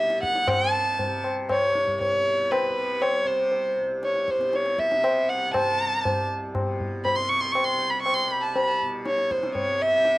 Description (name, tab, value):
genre	indian classical, Hindustani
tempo	119 BPM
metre	5/4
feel	straight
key	C raga marwa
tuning	A4 = 440 Hz
part	warm violin	melody	0.0-10.2 s	B4 to Db6	-23 LUFS	equal	none
part	tanpura	drone	0.0-10.2 s	C2 to C3	-35 LUFS	right 1 dB	none
part	tabla	percussion	0.1-10.2 s	none	-28 LUFS	left 2 dB	none
room	moderate spring reverb, RT60 1.1 s, studio reverb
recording	home recording on cassette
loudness	-22 LUFS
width	side -18 dB against mid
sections	0.0-10.2 A section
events	none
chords	none